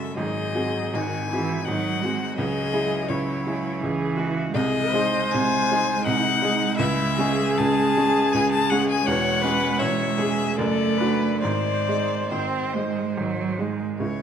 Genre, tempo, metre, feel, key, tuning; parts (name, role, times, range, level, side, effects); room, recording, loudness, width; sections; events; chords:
classical, slow romantic movement for piano quartet; 67-85 BPM; 3/4; rubato; C# minor; A4 = 441 Hz
warm violin; melody; 0.0-14.2 s; B#4 to A5; -26 LUFS; left 7 dB
rich cello; second line; 0.0-14.0 s; D#3 to B#3; -28 LUFS; right 6 dB
bright baby grand piano; accompaniment; 0.0-14.2 s; E1 to A4; -25 LUFS; equal
rich viola; accompaniment; 0.0-14.2 s; D#4 to C#5; -28 LUFS; right 1 dB
moderate recital hall reverb, RT60 1.7 s; -21 LUFS; side -8 dB against mid
0.0-14.0 A section
0.2 G#7; 2.4 C#m; 4.5 G#/B#; 6.8 C#m; 9.1 C#m/E; 10.6 D/F#; 11.4 G#